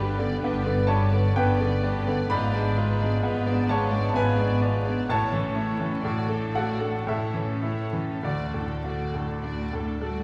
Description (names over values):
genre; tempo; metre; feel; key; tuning
classical, romantic movement for piano and orchestra; 48-66 BPM; 3/4; rubato; D major; A4 = 441 Hz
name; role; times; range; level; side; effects
bright baby grand piano; melody; 0.0-10.2 s; D2 to B5; -29 LUFS; equal; none
warm studio violin section; melody; 0.0-10.2 s; A4 to D5; -40 LUFS; equal; none
rich studio violin section; second line; 0.0-10.2 s; C#4 to B4; -40 LUFS; equal; none
warm studio viola section; accompaniment; 0.0-10.2 s; G#3 to D4; -36 LUFS; equal; none
dark studio double bass section; bass; 0.0-10.2 s; G1 to D2; -32 LUFS; equal; none
warm studio cello section; bass; 0.0-10.2 s; G2 to A3; -35 LUFS; equal; none
room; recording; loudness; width
wet scoring stage reverb, RT60 1.9 s; heard from further back in the room, vinyl crackle; -26 LUFS; mono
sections
0.0-10.2 A section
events
none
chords
0.0 G; 2.3 G#dim7; 5.1 A; 6.0 D/A; 7.1 A; 8.2 D